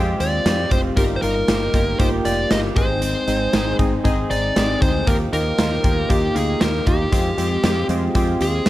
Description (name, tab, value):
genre	1980s-style pop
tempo	117 BPM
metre	4/4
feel	straight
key	Eb major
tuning	A4 = 439 Hz
part	glassy digital keys	accompaniment	0.0-8.7 s	Ab3 to Bb4	-23 LUFS	left 1 dB	chorus
part	direct-recorded clean electric guitar	riff	0.0-8.7 s	F3 to Ab4	-30 LUFS	right 6 dB	wide subtle chorus
part	mellow fretless electric bass	bass	0.0-8.7 s	F1 to F2	-25 LUFS	equal	none
part	fuzz lead guitar	melody	0.2-8.7 s	G4 to Eb5	-23 LUFS	left 1 dB	distortion
part	big rock drum kit	drums	0.2-8.7 s	hi-hat, kick drum, snare drum	-21 LUFS	equal	none
room	light reverb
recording	none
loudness	-17 LUFS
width	side -15 dB against mid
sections	0.0-8.7 A section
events	none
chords	0.0 Fmadd9; 1.0 Ebadd9/G; 2.8 Ab; 5.1 Ebadd9; 7.1 Fmadd9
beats	0.46 | 0.97 1.48 2.00 2.51 | 3.02 3.54 4.05 4.56 | 5.07 5.59 6.10 6.61 | 7.12 7.64 8.15 8.66